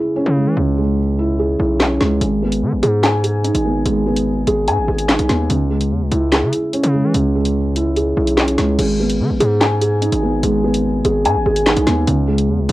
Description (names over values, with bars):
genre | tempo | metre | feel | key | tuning
hip hop, drill | 146 BPM | 4/4 | half-time | G# minor | A4 = 441 Hz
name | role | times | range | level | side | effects
felt-muted upright piano | accompaniment | 0.0-12.7 s | C#3 to G#5 | -16 LUFS | right 1 dB | none
distorted 808-style bass | bass | 0.3-12.7 s | G#1 to E3 | -19 LUFS | equal | distortion
drill drum kit | drums | 1.8-12.7 s | crash cymbal, handclaps, hi-hat, snare drum | -19 LUFS | equal | cassette tape
room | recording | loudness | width
moderate studio reverb, RT60 0.5 s | home recording on cassette | -14 LUFS | side -17 dB against mid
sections
0.0-8.8 A section; 8.8-12.7 B section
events
break 0.0-2.2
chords
0.0 C#m; 2.2 G#m; 5.5 C#m; 8.8 G#m; 12.1 C#m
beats
0.16 | 0.57 0.98 1.39 1.80 | 2.21 2.62 3.03 3.44 | 3.85 4.27 4.68 5.09 | 5.50 5.91 6.32 6.73 | 7.14 7.55 7.96 8.38 | 8.79 9.20 9.61 10.02 | 10.43 10.84 11.25 11.66 | 12.07 12.49